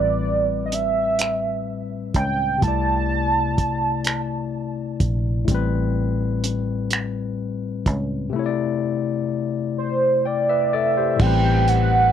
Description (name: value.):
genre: slow six-eight R&B.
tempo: 42 BPM (dotted quarters).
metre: 6/8.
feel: straight.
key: unclear.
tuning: A4 = 440 Hz.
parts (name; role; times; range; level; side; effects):
warm velvety synth lead; melody; 0.0-5.0, 9.8-12.1 s; C5 to A5; -21 LUFS; right 4 dB; chorus, tape echo.
barky tine electric piano; accompaniment; 0.0-12.1 s; A2 to G5; -24 LUFS; left 7 dB; overdrive.
vintage muted fingered electric bass; bass; 0.0-12.1 s; A1 to C#2; -24 LUFS; right 1 dB; none.
cloth-damped thuddy drum kit; drums; 0.7-11.9 s; crash cymbal, finger snaps, hi-hat, kick drum; -22 LUFS; right 1 dB; none.
pipe organ, foundations; sustained chords; 11.2-12.1 s; G3 to B4; -30 LUFS; right 5 dB; none.
room: little or no reverb.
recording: dry, close 1970s-style studio recording.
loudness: -19 LUFS.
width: side -9 dB against mid.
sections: 0.0-11.2 A section.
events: none.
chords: 0.0 Am9; 2.6 C69; 5.5 Am9; 8.3 C69; 11.2 Am9.